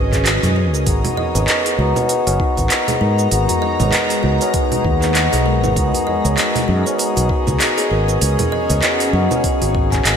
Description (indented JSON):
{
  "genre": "organic downtempo",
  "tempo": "98 BPM",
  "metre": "4/4",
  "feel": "swing 58% on 16ths",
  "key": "G# dorian",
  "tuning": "A4 = 440 Hz",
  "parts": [
    { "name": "granular cloud pad", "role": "sustained chords", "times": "0.0-10.2 s", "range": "G#3 to A#5", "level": "-24 LUFS", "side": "equal", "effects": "built-in reverb, sidechain pumping" },
    { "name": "kalimba", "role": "arpeggios", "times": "0.0-10.2 s", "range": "D#4 to G#5", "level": "-22 LUFS", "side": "right 2 dB", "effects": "digital delay" },
    { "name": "fretless electric bass", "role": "bass", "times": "0.0-10.2 s", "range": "F#1 to G#2", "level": "-18 LUFS", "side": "equal", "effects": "none" },
    { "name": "afro-pop drum kit", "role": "drums", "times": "0.1-10.2 s", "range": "congas, handclaps, hi-hat, shaker", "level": "-20 LUFS", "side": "right 2 dB", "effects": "gated reverb" },
    { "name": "electronic kick drum", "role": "drums", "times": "0.1-10.0 s", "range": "none", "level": "-21 LUFS", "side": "equal", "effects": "none" },
    { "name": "tabla", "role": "percussion", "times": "0.1-10.0 s", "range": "none", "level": "-29 LUFS", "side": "equal", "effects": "none" },
    { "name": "hand-pumped harmonium", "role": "accompaniment", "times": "0.8-10.2 s", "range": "B3 to A#5", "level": "-22 LUFS", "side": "left 4 dB", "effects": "sidechain pumping, digital delay" }
  ],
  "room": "moderate lush hall reverb, RT60 1.9 s, small room ambience",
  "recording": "bright 1980s-style digital production",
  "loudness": "-14 LUFS",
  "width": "side -7 dB against mid",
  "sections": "0.0-10.2 A section",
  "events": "none",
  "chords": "0.0 C#7sus4; 0.9 G#m7; 5.8 C#7sus4"
}